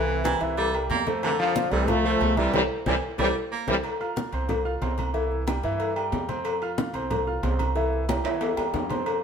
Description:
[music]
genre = latin, salsa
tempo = 184 BPM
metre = 4/4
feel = straight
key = F major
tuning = A4 = 441 Hz
[part]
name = brilliant trombone section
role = melody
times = 0.0-3.8 s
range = C3 to A3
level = -25 LUFS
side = left 1 dB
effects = none
[part]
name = warm concert grand piano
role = accompaniment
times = 0.0-9.2 s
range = E3 to F6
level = -30 LUFS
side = right 1 dB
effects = none
[part]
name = upright bass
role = bass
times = 0.0-9.2 s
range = C2 to G2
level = -30 LUFS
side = right 1 dB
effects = none
[part]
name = congas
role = percussion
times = 0.1-9.2 s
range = none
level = -32 LUFS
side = left 2 dB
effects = none
[part]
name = warm baritone saxophone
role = second line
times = 0.2-3.7 s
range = C3 to Bb3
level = -30 LUFS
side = right 3 dB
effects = none
[part]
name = cowbell and bongos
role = percussion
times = 0.2-9.2 s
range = none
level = -31 LUFS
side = left 5 dB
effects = none
[part]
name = timbales and agogo bells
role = percussion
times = 0.3-9.2 s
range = none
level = -32 LUFS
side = right 4 dB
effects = none
[sound]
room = wet stone room reverb, RT60 1.1 s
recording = band playing live in one room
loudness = -23 LUFS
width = side -7 dB against mid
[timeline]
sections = 0.0-3.8 A section; 3.8-9.2 B section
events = band accent 2.5-3.8; drum fill 3.3-3.8, 8.1-9.1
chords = 0.0 C7; 1.2 F6; 2.5 C7; 3.8 F5; 5.1 C; 6.5 F5; 7.8 C

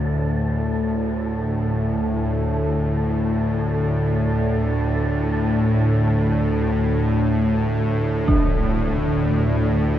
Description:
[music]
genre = dark ambient drone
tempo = free time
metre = none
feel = none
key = unclear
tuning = A4 = 440 Hz
[part]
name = deep dark ambient pad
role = sustained chords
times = 0.0-10.0 s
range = D4 to D5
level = -30 LUFS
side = right 3 dB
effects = chorus, built-in reverb
[part]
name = bowed-like drone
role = drone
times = 0.0-10.0 s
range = D2 to A2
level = -19 LUFS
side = equal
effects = built-in reverb
[part]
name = wind-like tuned noise texture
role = texture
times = 0.0-10.0 s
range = A4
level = -34 LUFS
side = right 2 dB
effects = built-in reverb
[part]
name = dark detuned synth bell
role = arpeggios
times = 8.3-10.0 s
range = D4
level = -27 LUFS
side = right 3 dB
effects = chorus, phaser
[part]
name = impact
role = percussion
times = 8.3-8.5 s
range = none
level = -24 LUFS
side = equal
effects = low-pass filter on sfx
[sound]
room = wet huge ambient reverb, RT60 7.4 s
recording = dark, warm production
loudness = -18 LUFS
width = side -11 dB against mid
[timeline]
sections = 0.0-10.0 A section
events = none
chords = 0.0 D5

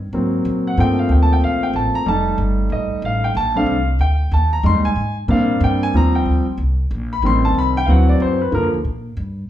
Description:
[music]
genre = jazz, big band swing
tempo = 186 BPM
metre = 4/4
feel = swing 64% on 8ths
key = Bb major, Eb major from 5.9 s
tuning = A4 = 438 Hz
[part]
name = upright bass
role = bass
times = 0.0-9.5 s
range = F1 to Bb2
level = -18 LUFS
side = equal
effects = none
[part]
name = warm baby grand piano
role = accompaniment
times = 0.1-8.8 s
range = D3 to C6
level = -18 LUFS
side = equal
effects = none
[sound]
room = wet large studio reverb, RT60 0.8 s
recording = band playing live in one room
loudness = -15 LUFS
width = side -12 dB against mid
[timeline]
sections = 0.0-5.9 A section; 5.9-9.5 A section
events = grand piano solo 0.0-9.5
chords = 0.1 Ab9; 0.8 Gm11; 2.1 F9; 3.3 Bbmaj13; 4.6 Fm7; 5.3 Bb69; 5.9 Eb69; 7.2 Am7b5; 7.9 D7; 8.5 Gm7

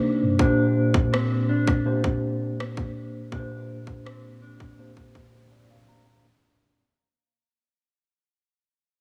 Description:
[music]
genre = contemporary R&B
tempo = 82 BPM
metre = 4/4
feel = straight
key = Bb major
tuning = A4 = 435 Hz
[part]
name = mellow tine electric piano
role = accompaniment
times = 0.0-6.3 s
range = Bb2 to Bb5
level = -28 LUFS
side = equal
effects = none
[part]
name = mellow electric guitar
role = arpeggios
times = 0.0-6.8 s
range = Bb2 to D4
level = -30 LUFS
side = equal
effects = lush chorus, digital delay
[part]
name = trap drum kit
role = drums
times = 0.4-5.3 s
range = kick drum, rim click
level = -29 LUFS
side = equal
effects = overdrive
[sound]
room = digital ambience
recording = none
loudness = -23 LUFS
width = mono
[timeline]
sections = 0.0-6.2 A section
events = fade-out 0.0-6.2; tine electric piano fill 5.2-6.2; break 5.5-6.2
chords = 0.4 Bb69

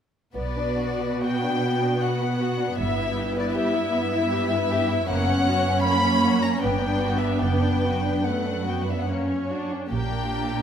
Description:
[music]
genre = classical, slow romantic movement for string orchestra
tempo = 65-80 BPM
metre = 3/4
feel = rubato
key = B minor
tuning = A4 = 440 Hz
[part]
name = warm symphonic violin section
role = second line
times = 0.3-10.6 s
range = A#3 to C#5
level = -29 LUFS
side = left 2 dB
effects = none
[part]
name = clear symphonic viola section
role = accompaniment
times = 0.3-10.6 s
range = A3 to F#4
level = -26 LUFS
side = right 1 dB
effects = none
[part]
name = rich studio double bass section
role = bass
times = 0.3-10.6 s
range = F#1 to B1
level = -30 LUFS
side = right 3 dB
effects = none
[part]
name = warm chamber violin section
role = melody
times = 0.4-10.6 s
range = D5 to B5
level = -27 LUFS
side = left 3 dB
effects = none
[part]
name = warm studio cello section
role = bass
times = 0.4-10.6 s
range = F#2 to B2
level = -28 LUFS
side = right 3 dB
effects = none
[sound]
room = wet concert hall reverb, RT60 2.1 s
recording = none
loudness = -21 LUFS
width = side -8 dB against mid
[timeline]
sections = 0.3-10.6 A section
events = none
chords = 0.3 Bm; 2.8 Em/G; 5.1 F#; 6.6 Gmaj7; 7.4 Bm/F#; 9.1 F#; 9.9 Gm/Bb

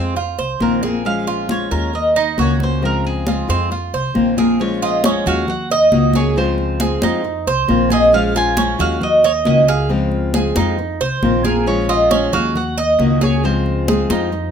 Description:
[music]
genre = latin, Cuban son and guajira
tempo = 136 BPM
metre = 4/4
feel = straight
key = Bb minor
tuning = A4 = 440 Hz
[part]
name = Cuban tres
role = melody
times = 0.0-14.5 s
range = Ab4 to Ab5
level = -18 LUFS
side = right 1 dB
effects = none
[part]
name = fingerpicked steel-string acoustic guitar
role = accompaniment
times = 0.0-14.4 s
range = Db3 to Gb4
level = -21 LUFS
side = left 4 dB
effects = none
[part]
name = Cuban tres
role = arpeggios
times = 0.0-14.5 s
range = C4 to Eb5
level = -21 LUFS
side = right 6 dB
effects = none
[part]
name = upright bass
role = bass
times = 0.0-14.5 s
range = Bb1 to F2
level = -21 LUFS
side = equal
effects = none
[part]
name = congas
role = percussion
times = 0.2-14.5 s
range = none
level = -21 LUFS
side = left 2 dB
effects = none
[sound]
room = light reverb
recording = minimal, uncompressed stereo recording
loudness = -14 LUFS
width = side -7 dB against mid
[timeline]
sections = 0.0-4.6 A section; 4.6-14.5 B section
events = drum fill 4.4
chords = 0.2 F7sus4; 1.1 Bbm7; 1.9 Ebm7; 2.8 Dbmaj7; 3.7 F7sus4; 4.6 Bbm7; 5.5 Ebm7; 6.4 Dbmaj7; 7.2 F7sus4; 8.1 Bbm7; 9.0 Ebm7; 9.9 Dbmaj7; 10.8 F7sus4; 11.7 Bbm7; 12.6 Ebm7; 13.4 Dbmaj7

